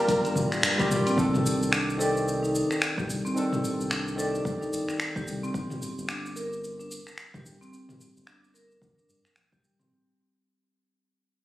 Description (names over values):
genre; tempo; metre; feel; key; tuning
organic downtempo; 110 BPM; 4/4; swing 60% on 16ths; C dorian; A4 = 440 Hz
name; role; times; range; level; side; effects
dark duduk; melody; 0.0-0.6 s; Bb4; -29 LUFS; equal; tape echo
barky tine electric piano; accompaniment; 0.0-5.6 s; Eb3 to D5; -30 LUFS; left 1 dB; overdrive, auto-pan, sidechain pumping, tape echo
round analog bass; bass; 0.0-9.9 s; G1 to G2; -35 LUFS; equal; sidechain pumping
deep house drum kit; drums; 0.1-9.9 s; cabasa, finger snaps, hi-hat, toms; -30 LUFS; equal; none
electronic kick drum; drums; 0.1-9.6 s; none; -32 LUFS; equal; none
marimba with medium mallets; arpeggios; 0.2-9.9 s; G3 to Bb4; -30 LUFS; equal; tape echo
room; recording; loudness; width
moderate digital room reverb, RT60 1.1 s; recorded on a phone in the room, studio reverb; -25 LUFS; side -15 dB against mid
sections
0.0-1.2 A section; 1.2-9.9 B section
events
band accent 0.6; fade-out 1.2-9.9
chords
0.0 Gm9; 1.2 Cm69; 5.5 Gm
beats
0.09 0.63 | 1.18 1.72 2.27 2.81 | 3.36 3.90 4.45 5.00 | 5.54 6.09 6.63 7.18 | 7.72 8.27 8.81 9.36